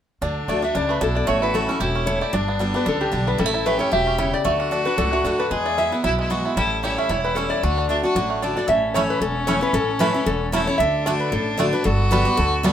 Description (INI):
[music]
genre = bluegrass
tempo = 227 BPM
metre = 4/4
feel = swing 55% on 8ths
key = D major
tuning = A4 = 440 Hz
[part]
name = bluegrass banjo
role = melody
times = 0.2-12.7 s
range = G3 to G4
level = -26 LUFS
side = right 5 dB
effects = none
[part]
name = rich fiddle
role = second line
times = 0.2-12.7 s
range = C#4 to G#4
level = -26 LUFS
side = left 1 dB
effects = none
[part]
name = picked steel-string acoustic guitar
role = accompaniment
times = 0.2-12.7 s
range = E2 to G4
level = -25 LUFS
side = left 1 dB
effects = none
[part]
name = upright bass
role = bass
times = 0.2-12.7 s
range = E1 to E2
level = -26 LUFS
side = equal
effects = none
[part]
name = lap resonator guitar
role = melody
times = 0.5-12.7 s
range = F#4 to E5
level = -24 LUFS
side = left 2 dB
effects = none
[sound]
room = moderate studio reverb, RT60 0.8 s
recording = minimal, uncompressed stereo recording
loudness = -18 LUFS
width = side -9 dB against mid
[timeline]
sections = 0.2-8.7 A section; 8.7-12.7 B section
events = none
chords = 0.2 D; 1.3 A; 2.3 G; 3.4 A; 4.5 D; 5.5 E; 6.6 A7; 7.6 D; 8.7 A; 10.8 D; 11.8 G